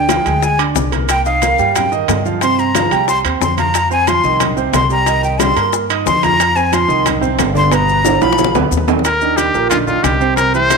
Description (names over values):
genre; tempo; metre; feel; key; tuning
latin, salsa; 181 BPM; 4/4; straight; C minor; A4 = 440 Hz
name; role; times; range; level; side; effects
breathy bright jazz flute; melody; 0.0-8.6 s; F5 to C6; -16 LUFS; left 2 dB; slapback echo
clear grand piano; accompaniment; 0.0-10.8 s; Bb2 to Eb6; -18 LUFS; right 11 dB; none
upright bass; bass; 0.0-10.8 s; G1 to G2; -20 LUFS; left 1 dB; none
bongos; percussion; 0.1-10.8 s; none; -23 LUFS; left 14 dB; none
congas; percussion; 0.1-10.8 s; none; -24 LUFS; left 14 dB; none
maracas; percussion; 0.1-10.8 s; none; -27 LUFS; left 16 dB; none
timbales; percussion; 0.1-10.8 s; none; -21 LUFS; right 12 dB; none
bright trumpet; melody; 9.1-10.8 s; F4 to C5; -14 LUFS; left 1 dB; none
room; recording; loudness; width
moderate echo chamber reverb, RT60 1.6 s, studio ambience; 1960s-style stereo with parts hard left and right; -12 LUFS; side -4 dB against mid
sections
0.0-9.1 A section; 9.1-10.8 B section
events
flute solo 0.0-9.1; drum fill 8.1-9.1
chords
0.0 Dm7b5; 1.1 Cm7; 2.4 F5; 5.1 Cm7; 6.4 F5; 7.7 G7; 9.1 Ebmaj7